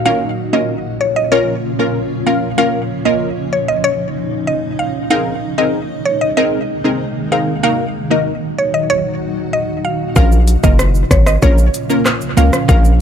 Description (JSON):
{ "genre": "dancehall", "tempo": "95 BPM", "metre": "4/4", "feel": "straight", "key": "Bb minor", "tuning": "A4 = 440 Hz", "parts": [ { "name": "granular cloud pad", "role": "sustained chords", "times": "0.0-13.0 s", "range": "Bb2 to Gb4", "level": "-21 LUFS", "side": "equal", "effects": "built-in reverb, sidechain pumping" }, { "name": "mallet-like synth pluck", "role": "melody", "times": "0.1-12.9 s", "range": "Db5 to F5", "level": "-18 LUFS", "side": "equal", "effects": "chorus, tape echo" }, { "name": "punchy chord stab", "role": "accompaniment", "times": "0.1-12.9 s", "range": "Bb3 to Bb4", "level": "-18 LUFS", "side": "equal", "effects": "chorus" }, { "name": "hard-hitting 808-style bass", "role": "bass", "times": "10.2-13.0 s", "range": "Gb1 to Db2", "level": "-12 LUFS", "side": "equal", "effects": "none" }, { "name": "pop drum kit", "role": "drums", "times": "10.2-13.0 s", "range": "handclaps, hi-hat, kick drum, rim click, shaker", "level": "-13 LUFS", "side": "equal", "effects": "overdrive" } ], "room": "digital ambience", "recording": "echo-heavy mix", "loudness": "-13 LUFS", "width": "side -8 dB against mid", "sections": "0.1-13.0 A section", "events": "none", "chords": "0.1 Bbm; 5.1 Abadd9; 7.6 Ebm; 10.2 Bbm" }